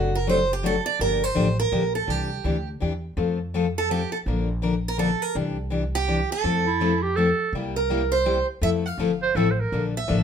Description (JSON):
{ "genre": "acoustic string swing (jazz manouche)", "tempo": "165 BPM", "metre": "3/4", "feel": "swing 62% on 8ths", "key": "F major", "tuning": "A4 = 440 Hz", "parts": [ { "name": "picked steel-string acoustic guitar", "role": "melody", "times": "0.0-10.2 s", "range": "Gb4 to F5", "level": "-25 LUFS", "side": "right 5 dB", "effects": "none" }, { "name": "picked steel-string acoustic guitar", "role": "accompaniment", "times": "0.0-10.2 s", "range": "C3 to Bb4", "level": "-25 LUFS", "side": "left 5 dB", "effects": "none" }, { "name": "upright bass", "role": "bass", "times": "0.0-10.2 s", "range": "F#1 to F2", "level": "-28 LUFS", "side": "equal", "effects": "none" }, { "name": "breathy clarinet", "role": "second line", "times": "6.7-9.8 s", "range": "E4 to C5", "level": "-24 LUFS", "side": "right 5 dB", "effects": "none" } ], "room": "moderate studio reverb, RT60 0.7 s", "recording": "minimal, uncompressed stereo recording", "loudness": "-21 LUFS", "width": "side -8 dB against mid", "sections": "0.0-7.5 A section; 7.5-10.2 B section", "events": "none", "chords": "0.0 D7/F#; 1.0 Gm7; 2.1 Cadd9; 3.2 F; 4.3 Bb; 5.4 Cadd9; 6.4 Fmaj7; 7.5 C7; 8.6 Fmaj7; 9.7 Bbmaj7" }